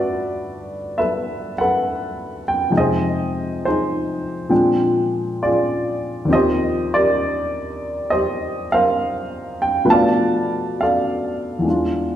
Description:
jazz ballad; 67 BPM; 4/4; swing 68% on 8ths; A4 = 440 Hz
warm baby grand piano; solo; 0.0-12.2 s; Eb2 to A5; -18 LUFS; equal
wet recital hall reverb, RT60 1.6 s; recorded in a church or concert hall; -17 LUFS; side -11 dB against mid
0.0-12.2 A section
0.0 Gmaj9; 2.7 Fm7; 4.5 Bb13; 6.3 Eb6; 9.9 Bm7b5; 11.7 E7b9

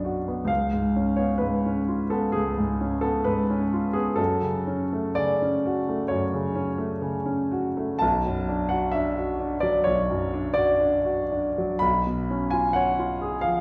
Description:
classical, romantic nocturne for solo piano; 64 BPM; 4/4; uneven beats, rubato; F# minor; A4 = 440 Hz
clear concert grand piano; solo; 0.0-13.6 s; B1 to B5; -25 LUFS; equal
wet recital hall reverb, RT60 1.3 s; recorded in a church or concert hall; -25 LUFS; mono
0.0-13.6 A section
0.0 Bm; 0.5 C#7; 4.2 F#m; 8.0 Bm; 11.8 C#7/B

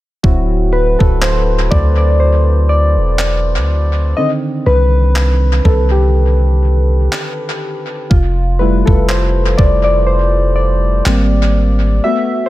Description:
contemporary R&B; 61 BPM; 4/4; swing 54% on 16ths; A4 = 439 Hz
soft electric-piano-like synth keys; accompaniment; 0.2-12.5 s; D3 to E5; -16 LUFS; left 1 dB; chorus
long sustained 808-style bass; bass; 0.2-12.0 s; D1 to D2; -13 LUFS; equal
gated 80s digital drum machine; drums; 0.2-11.3 s; handclaps, kick drum; -16 LUFS; equal; gated reverb, tape echo
little or no reverb; echo-heavy mix; -11 LUFS; side -16 dB against mid
0.2-12.5 A section
hi-hats muted 0.2-12.5; synth keys solo 0.2-12.5
0.2 D7; 4.2 Cmadd9; 8.1 Fmaj7; 11.1 Abmaj9

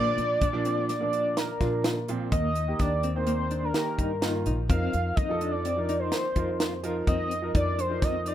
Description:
progressive instrumental, band music in an uneven meter; 126 BPM; 5/4; straight; Eb major; A4 = 440 Hz
octave-doubled lead; melody; 0.0-8.3 s; Bb4 to F5; -29 LUFS; equal; chorus, tape echo
warm concert grand piano; accompaniment; 0.0-8.3 s; Bb2 to Bb4; -32 LUFS; right 3 dB
clean electric guitar; arpeggios; 0.0-8.3 s; Bb3 to F4; -35 LUFS; left 3 dB; tremolo, tape echo
upright bass; bass; 0.0-8.3 s; Bb1 to Bb2; -31 LUFS; equal
crisp fusion drum kit; drums; 0.2-8.3 s; hi-hat, kick drum, snare drum; -29 LUFS; equal
light reverb; rough home demo mix; -24 LUFS; side -11 dB against mid
0.0-8.3 A section
0.0 Bb; 2.3 Eb; 4.7 F7sus4

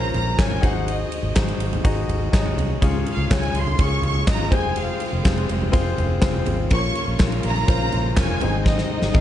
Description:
piano-driven pop; 123 BPM; 4/4; straight; A4 = 437 Hz
rich studio violin section; melody; 0.0-9.2 s; Eb5 to Db6; -27 LUFS; equal
warm concert grand piano; accompaniment; 0.0-9.2 s; Ab2 to Eb5; -27 LUFS; left 4 dB
vintage muted fingered electric bass; bass; 0.0-9.2 s; F1 to Db2; -24 LUFS; equal
huge arena drum kit; drums; 0.1-9.2 s; handclaps, kick drum, ride cymbal, snare drum, toms; -21 LUFS; equal
warm studio string section; sustained chords; 2.8-9.2 s; C3 to F4; -32 LUFS; equal
small room reverb; dark, warm production, nothing above 10.7 kHz; -18 LUFS; side -11 dB against mid
0.0-9.2 A section
drum fill 8.7-9.2
0.0 Bbm; 0.6 Ab7; 2.8 Db; 4.5 Fm; 6.7 Bbm; 8.4 Ab

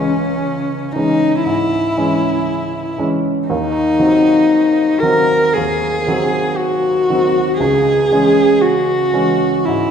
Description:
classical, romantic duo for cello and grand piano; 59 BPM; 4/4; rubato; C# minor; A4 = 440 Hz
warm cello; melody; 0.0-9.9 s; C#4 to A#4; -14 LUFS; left 1 dB
warm grand piano; accompaniment; 0.0-9.9 s; C#2 to C#4; -18 LUFS; right 2 dB
wet scoring stage reverb, RT60 1.8 s; recorded in a church or concert hall; -13 LUFS; side -7 dB against mid
0.0-9.9 A section
0.0 C#m; 3.5 Cdim/Eb; 7.6 C#m

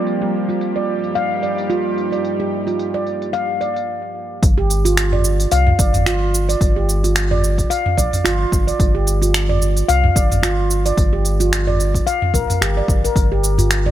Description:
organic downtempo; 110 BPM; 4/4; swing 56% on 16ths; G minor; A4 = 445 Hz
bowed-like drone; sustained chords; 0.0-3.9, 13.2-13.9 s; G2 to G4; -23 LUFS; equal; built-in reverb, sidechain pumping
handpan; arpeggios; 0.0-13.9 s; F4 to F5; -20 LUFS; right 1 dB; tape echo
deep house drum kit; drums; 0.1-13.9 s; finger snaps, hi-hat, shaker, toms; -21 LUFS; right 1 dB; low-pass filter on hats, low-pass filter on perc, low-pass filter on snare, low-pass filter on toms, low-pass filter on room
warm sub bass; bass; 4.4-13.9 s; G1 to C2; -18 LUFS; equal; tube saturation
electronic kick drum; drums; 4.4-13.3 s; -17 LUFS; equal
udu; percussion; 13.6-13.7 s; -20 LUFS; left 1 dB
light reverb, digital ambience; low-pass filter; -15 LUFS; side -12 dB against mid
0.0-4.4 A section; 4.4-13.9 B section
filter sweep on handpan 0.0-4.4; filter sweep 0.0-4.4; stop 3.9-4.4
0.1 Ebadd9/G; 4.4 Gm7

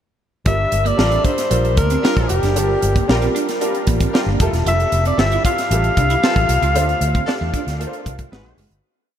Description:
polished 1980s jazz-funk pop; 115 BPM; 4/4; straight; G dorian; A4 = 440 Hz
breathy alto saxophone; melody; 0.5-8.3 s; G4 to F5; -20 LUFS; left 1 dB; ping-pong delay
clear baby grand piano; accompaniment; 0.5-8.9 s; G3 to C5; -24 LUFS; equal; analog chorus
clean electric guitar; riff; 0.5-8.7 s; G3 to F4; -27 LUFS; right 5 dB; ensemble chorus
vintage muted fingered electric bass; bass; 0.5-8.8 s; E1 to E2; -19 LUFS; equal
tight funk drum kit; drums; 0.5-8.8 s; hi-hat, kick drum, snare drum; -21 LUFS; equal
warm horn section; second line; 1.0-8.6 s; E3 to Cb5; -30 LUFS; left 2 dB
moderate huge ambient reverb, RT60 7.9 s; dreamy mix soaked in reverb; -15 LUFS; side -10 dB against mid
0.5-8.8 verse
fade-out 6.7-8.8
0.5 Gm7; 4.4 Fmaj9; 6.7 Dm7; 8.3 Abm7

